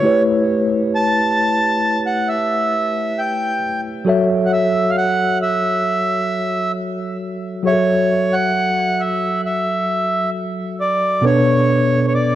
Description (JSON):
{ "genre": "R&B", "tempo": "67 BPM", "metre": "4/4", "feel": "straight", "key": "unclear", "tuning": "A4 = 439 Hz", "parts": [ { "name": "accordion", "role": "melody", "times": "0.0-12.4 s", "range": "C#5 to A5", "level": "-18 LUFS", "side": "right 1 dB", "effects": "none" }, { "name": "tine electric piano", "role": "accompaniment", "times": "0.0-12.4 s", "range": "B2 to E5", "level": "-18 LUFS", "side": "equal", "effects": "medium stereo tremolo" } ], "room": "moderate lush hall reverb, RT60 3.0 s", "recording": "worn, warbling old tape, cassette tape, warbly pitch drift", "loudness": "-15 LUFS", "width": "side -12 dB against mid", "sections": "0.0-7.6 A section; 7.6-12.4 B section", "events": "none", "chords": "0.0 A9; 4.1 F#m7; 11.2 Bm9" }